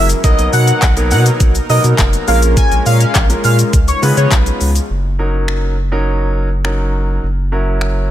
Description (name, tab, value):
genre	dance-pop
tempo	103 BPM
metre	4/4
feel	straight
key	F# major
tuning	A4 = 438 Hz
part	octave-doubled lead	melody	0.0-4.3 s	C#5 to G#5	-18 LUFS	equal	chorus, phaser, sidechain pumping, digital delay
part	warm concert grand piano	accompaniment	0.0-8.1 s	F#3 to B4	-20 LUFS	equal	sidechain pumping
part	chorused pulse-width pad	sustained chords	0.0-4.9 s	B2 to A#4	-22 LUFS	left 1 dB	sidechain pumping
part	saturated sub bass	bass	0.0-8.1 s	E#1 to C#3	-14 LUFS	equal	sidechain pumping
part	pop drum kit	drums	0.1-7.9 s	finger snaps, handclaps, hi-hat, kick drum, shaker	-15 LUFS	equal	none
part	group handclap	percussion	0.8-4.5 s	none	barely audible	none	none
room	little or no reverb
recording	none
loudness	-11 LUFS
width	side -12 dB against mid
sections	0.0-4.9 A section; 4.9-8.1 B section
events	drop 0.0-4.9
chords	0.2 Bmaj7; 2.3 A#m7; 3.7 C#7; 4.9 F#6; 7.2 F#7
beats	| 0.24 0.82 1.41 1.99 | 2.57 3.15 3.73 4.32 | 4.90 5.48 6.07 6.65 | 7.23 7.81